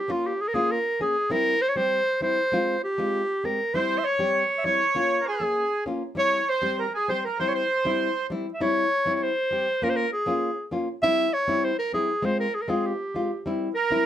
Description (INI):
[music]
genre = klezmer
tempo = 99 BPM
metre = 2/4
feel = straight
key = C phrygian dominant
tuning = A4 = 440 Hz
[part]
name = clear clarinet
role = melody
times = 0.0-14.1 s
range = F4 to E5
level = -24 LUFS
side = equal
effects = none
[part]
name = nylon-string guitar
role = accompaniment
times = 0.1-14.1 s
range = G3 to Ab4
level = -28 LUFS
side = left 2 dB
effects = none
[part]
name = accordion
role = second line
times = 3.7-8.3, 13.8-14.1 s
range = Ab4 to Db5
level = -26 LUFS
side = right 4 dB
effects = none
[sound]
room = light reverb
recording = none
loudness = -22 LUFS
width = side -11 dB against mid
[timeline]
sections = 0.0-8.6 A section; 8.6-14.1 A section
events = none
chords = 0.1 Bbm; 1.3 C; 2.5 Fm; 3.7 C; 5.0 Bbm; 6.2 C; 9.8 Bbm; 11.0 C; 12.2 Fm; 13.4 C